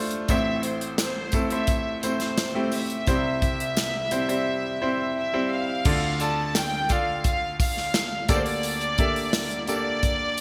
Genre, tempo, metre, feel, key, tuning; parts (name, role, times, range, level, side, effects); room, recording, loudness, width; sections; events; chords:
piano-driven pop; 86 BPM; 4/4; straight; D minor; A4 = 440 Hz
bright concert grand piano; accompaniment; 0.0-10.4 s; A1 to E5; -29 LUFS; equal
modern studio drum kit; drums; 0.1-10.4 s; crash cymbal, hi-hat, kick drum, snare drum; -28 LUFS; equal; gated reverb
warm studio violin section; melody; 0.3-10.4 s; C5 to A5; -30 LUFS; equal
tambourine; percussion; 0.3-10.4 s; -40 LUFS; equal
light reverb, small room ambience; bright 1980s-style digital production; -25 LUFS; mono
0.0-5.9 A section; 5.9-10.4 B section
0.3 Am; 3.1 C; 5.9 Dm; 8.3 Gmadd9/D